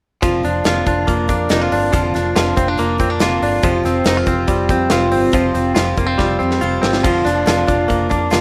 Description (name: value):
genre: jangly indie pop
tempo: 141 BPM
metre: 4/4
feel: straight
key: unclear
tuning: A4 = 440 Hz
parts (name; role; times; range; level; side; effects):
- picked steel-string acoustic guitar; accompaniment; 0.2-8.4 s; F2 to G4; -23 LUFS; equal; none
- direct-recorded clean electric guitar; arpeggios; 0.2-8.4 s; F3 to F4; -20 LUFS; equal; subtle chorus
- vintage muted fingered electric bass; bass; 0.2-8.4 s; F1 to F2; -25 LUFS; equal; none
- big rock drum kit; drums; 0.2-8.4 s; crash cymbal, hi-hat, kick drum, snare drum; -23 LUFS; equal; none
room: light reverb, small room ambience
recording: rough home demo mix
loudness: -16 LUFS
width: mono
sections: 0.2-8.4 A section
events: drum fill 6.2-7.0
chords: 0.2 Bb/F; 3.6 Fsus2; 7.0 Bb/F